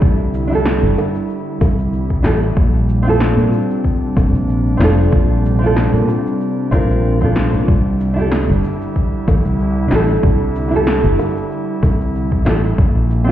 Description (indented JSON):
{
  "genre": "sunset chillout",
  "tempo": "94 BPM",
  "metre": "4/4",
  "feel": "swing 55% on 16ths",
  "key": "C mixolydian",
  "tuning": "A4 = 435 Hz",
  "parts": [
    { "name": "nylon-string guitar", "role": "accompaniment", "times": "0.0-13.3 s", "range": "C4 to Bb4", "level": "-20 LUFS", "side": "right 1 dB", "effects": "auto-pan, ping-pong delay" },
    { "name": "airy breathy pad", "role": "sustained chords", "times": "0.0-13.3 s", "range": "C3 to E4", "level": "-21 LUFS", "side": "right 1 dB", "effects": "chorus" },
    { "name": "fretless electric bass", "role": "bass", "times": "0.0-13.3 s", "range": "F1 to Bb2", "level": "-16 LUFS", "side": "equal", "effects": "none" },
    { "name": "electronic cabasa and snare drum", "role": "drums", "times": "0.0-13.3 s", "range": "none", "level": "-23 LUFS", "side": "equal", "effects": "overdrive" },
    { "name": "electronic kick drum", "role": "drums", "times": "0.0-12.9 s", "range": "none", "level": "-16 LUFS", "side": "equal", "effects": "overdrive" },
    { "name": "bongos", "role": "percussion", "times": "1.0-12.0 s", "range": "none", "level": "-28 LUFS", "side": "left 4 dB", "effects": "none" }
  ],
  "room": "light reverb",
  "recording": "heard muffled through a wall, stone room reverb, EQ",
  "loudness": "-13 LUFS",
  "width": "side -12 dB against mid",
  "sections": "0.0-13.3 A section",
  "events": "none",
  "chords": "0.0 C69; 2.6 Bbmaj9; 7.7 C69; 12.8 Bbadd9"
}